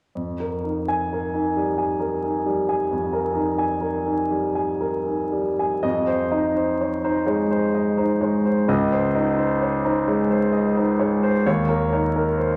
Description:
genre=classical, impressionist solo piano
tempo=56-69 BPM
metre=3/4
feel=rubato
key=F minor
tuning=A4 = 440 Hz
part: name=clear concert grand piano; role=solo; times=0.2-12.6 s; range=Db2 to Ab5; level=-22 LUFS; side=equal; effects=none
room=wet recital hall reverb, RT60 1.7 s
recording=vinyl crackle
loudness=-22 LUFS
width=mono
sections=0.2-5.8 A section; 5.8-12.6 B section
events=none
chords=0.2 Fm11; 5.8 Fm7; 8.7 Dbsus2; 11.4 Eb5

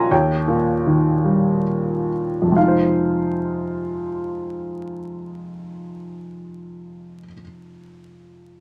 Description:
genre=classical, lyrical solo piano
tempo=43-58 BPM (dotted quarters)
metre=6/8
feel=rubato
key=F minor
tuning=A4 = 440 Hz
part: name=clear upright piano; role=solo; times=0.0-8.6 s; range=Eb2 to C6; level=-22 LUFS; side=equal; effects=none
room=moderate studio reverb, RT60 0.6 s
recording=vinyl crackle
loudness=-20 LUFS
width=mono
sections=0.0-2.6 A section; 2.6-7.8 B section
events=slowing down 0.0-2.6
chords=0.1 Eb7; 2.6 Fm7

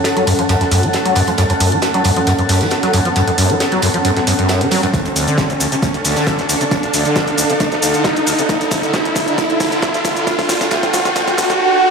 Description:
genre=driving peak-time techno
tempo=135 BPM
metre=4/4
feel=straight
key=unclear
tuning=A4 = 445 Hz
part: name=big rock drum kit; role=drums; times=0.0-11.5 s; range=hi-hat, snare drum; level=-25 LUFS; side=right 1 dB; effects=high-pass filter on hats, high-pass filter on snare, high-pass filter on room
part: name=electronic hi-hat and shaker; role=drums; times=0.0-11.6 s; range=none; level=-22 LUFS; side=equal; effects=overdrive, sidechain pumping on hats, sidechain pumping on perc
part: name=riser and swell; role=sound effects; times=0.1-11.9 s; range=none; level=-19 LUFS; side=right 2 dB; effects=none
part: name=granular cloud pad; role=texture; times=0.0-11.6 s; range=C#4 to A5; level=-19 LUFS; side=equal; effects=built-in reverb, sidechain pumping
part: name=overdriven acid bass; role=riff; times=0.2-11.5 s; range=D2 to F#3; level=-18 LUFS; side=equal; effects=wide subtle chorus, sidechain pumping, dub echo
part: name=electronic kick drum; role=drums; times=4.9-11.6 s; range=none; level=-22 LUFS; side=equal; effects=none
room=wet stone room reverb, RT60 1.0 s, digital ambience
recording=played on a big sound system in a bare room, stone room reverb, high-pass filter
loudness=-13 LUFS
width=side -5 dB against mid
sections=0.0-11.9 A section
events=build-up 0.0-11.9; filter sweep on acid bass 0.0-11.9; riser 0.1-11.9; drum fill 4.9-11.6; swell 11.2-11.9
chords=0.0 F#m; 4.9 Dm

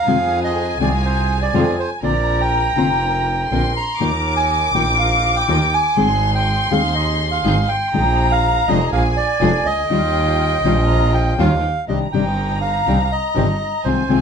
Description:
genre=tango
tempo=122 BPM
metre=4/4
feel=rubato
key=Eb major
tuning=A4 = 442 Hz
part: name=bandoneon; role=melody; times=0.0-14.2 s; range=C5 to Bb5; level=-21 LUFS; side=right 2 dB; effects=none
part: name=warm studio violin section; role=second line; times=0.0-14.2 s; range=G5 to D6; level=-22 LUFS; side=left 2 dB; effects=none
part: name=warm double bass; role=bass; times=0.0-14.2 s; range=F1 to F2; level=-20 LUFS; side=right 1 dB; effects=none
part: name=nylon-string guitar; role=accompaniment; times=0.1-14.2 s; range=C3 to Bb4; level=-19 LUFS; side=left 4 dB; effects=none
part: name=rich chamber string section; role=stabs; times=0.1-14.2 s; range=G3 to Bb4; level=-29 LUFS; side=right 2 dB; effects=none
room=wet studio reverb, RT60 0.5 s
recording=band playing live in one room, nothing above 10.7 kHz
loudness=-15 LUFS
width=side -6 dB against mid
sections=0.0-11.9 A section; 11.9-14.2 B section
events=none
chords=0.1 Fm7; 2.0 Bbadd9; 4.0 Ebsus2; 6.0 Ab; 7.9 Bb7sus4; 8.9 Bb7; 9.9 Ebadd9; 11.9 Cmadd9

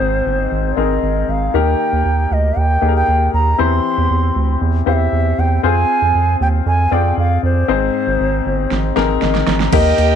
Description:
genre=piano-driven pop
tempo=117 BPM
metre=4/4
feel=straight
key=unclear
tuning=A4 = 440 Hz
part: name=bright reedy bansuri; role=melody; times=0.0-10.2 s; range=C5 to C6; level=-19 LUFS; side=right 2 dB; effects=none
part: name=clear grand piano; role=accompaniment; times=0.0-10.2 s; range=Ab2 to Eb5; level=-19 LUFS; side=left 12 dB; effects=none
part: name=round analog bass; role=bass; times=0.0-10.2 s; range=G1 to F2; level=-17 LUFS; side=right 2 dB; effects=none
part: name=pop drum kit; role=drums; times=8.7-10.1 s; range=crash cymbal, kick drum, ride cymbal, snare drum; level=-19 LUFS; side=right 9 dB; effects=overdrive
part: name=dark studio violin section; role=second line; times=9.7-10.2 s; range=G4 to G5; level=-22 LUFS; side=right 10 dB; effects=none
room=light reverb, small room reverb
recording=1960s-style stereo with parts hard left and right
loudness=-13 LUFS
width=side -8 dB against mid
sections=0.0-9.7 A section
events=drum fill 8.7-9.7; grand piano fill 9.0-9.7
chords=0.0 Ab; 1.5 Eb; 3.6 C; 5.6 Fm; 7.7 Ab

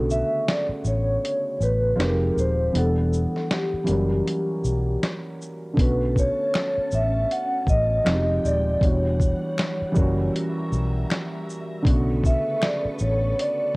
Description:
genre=lo-fi hip hop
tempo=79 BPM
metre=4/4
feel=swing 60% on 16ths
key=B minor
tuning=A4 = 440 Hz
part: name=felt-muted upright piano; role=accompaniment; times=0.0-13.8 s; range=C#3 to F#5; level=-27 LUFS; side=right 1 dB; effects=low-pass filter, cassette tape
part: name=vintage muted fingered electric bass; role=bass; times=0.0-13.3 s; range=Eb1 to B1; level=-24 LUFS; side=equal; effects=none
part: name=vibraphone with soft mallets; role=melody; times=0.1-13.8 s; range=G4 to F#5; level=-25 LUFS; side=equal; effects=low-pass filter
part: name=lo-fi sampler-style drum kit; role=drums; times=0.1-13.6 s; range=hi-hat, kick drum, shaker, snare drum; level=-24 LUFS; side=equal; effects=cassette tape
part: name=soft string machine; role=sustained chords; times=5.8-13.8 s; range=G3 to C#6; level=-38 LUFS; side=equal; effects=ensemble chorus, low-pass filter, cassette tape
part: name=finger snap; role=percussion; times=6.5-12.8 s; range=none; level=-36 LUFS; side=left 2 dB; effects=none
room=light reverb, small room ambience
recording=home recording on cassette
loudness=-20 LUFS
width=side -25 dB against mid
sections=0.0-13.8 A section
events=break 0.0-5.8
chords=0.0 Bm9; 2.0 Fm9; 2.7 Em9; 3.9 F#7b9; 5.8 Bm9; 8.1 Fm9; 8.8 Em9; 10.0 F#7b9; 11.9 Bm9

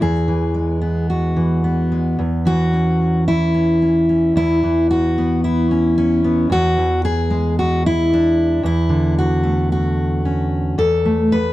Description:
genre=folk, solo fingerstyle acoustic guitar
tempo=112 BPM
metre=4/4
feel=straight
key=unclear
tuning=A4 = 440 Hz
part: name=fingerpicked steel-string acoustic guitar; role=solo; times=0.0-11.5 s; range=E2 to B4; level=-15 LUFS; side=equal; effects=none
room=light reverb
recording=dark, warm production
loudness=-15 LUFS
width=side -16 dB against mid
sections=0.0-2.2 A section; 2.2-11.5 B section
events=none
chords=0.0 Eadd9; 2.2 Bsus24/E; 6.5 Eadd9; 8.6 Dmaj7/E; 10.8 Asus2/E

